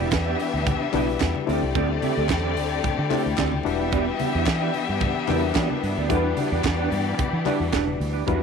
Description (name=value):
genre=disco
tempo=110 BPM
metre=4/4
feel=straight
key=E minor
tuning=A4 = 440 Hz
part: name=warm studio violin section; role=second line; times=0.0-8.2 s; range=A3 to E5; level=-28 LUFS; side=left 12 dB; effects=none
part: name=mellow electric guitar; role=accompaniment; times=0.0-8.4 s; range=G3 to E5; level=-28 LUFS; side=right 16 dB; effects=analog chorus
part: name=reed electric piano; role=accompaniment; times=0.0-8.4 s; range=G3 to D5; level=-29 LUFS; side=left 13 dB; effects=fast tremolo
part: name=clear symphonic string section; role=sustained chords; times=0.0-8.4 s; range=D3 to F#4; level=-30 LUFS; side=equal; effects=none
part: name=fingered electric bass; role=bass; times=0.0-8.4 s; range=E1 to E3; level=-27 LUFS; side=right 1 dB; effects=none
part: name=tight funk drum kit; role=drums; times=0.1-8.4 s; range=hi-hat, kick drum, snare drum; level=-29 LUFS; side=right 5 dB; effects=none
part: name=congas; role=percussion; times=0.1-8.4 s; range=none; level=-34 LUFS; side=left 6 dB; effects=none
part: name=group handclap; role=percussion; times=0.1-7.9 s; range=none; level=-37 LUFS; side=left 13 dB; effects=none
room=light reverb, small room ambience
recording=1960s-style stereo with parts hard left and right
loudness=-21 LUFS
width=side -6 dB against mid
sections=0.0-8.3 A section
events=none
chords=0.0 Em7; 1.5 D7sus4; 3.7 Em7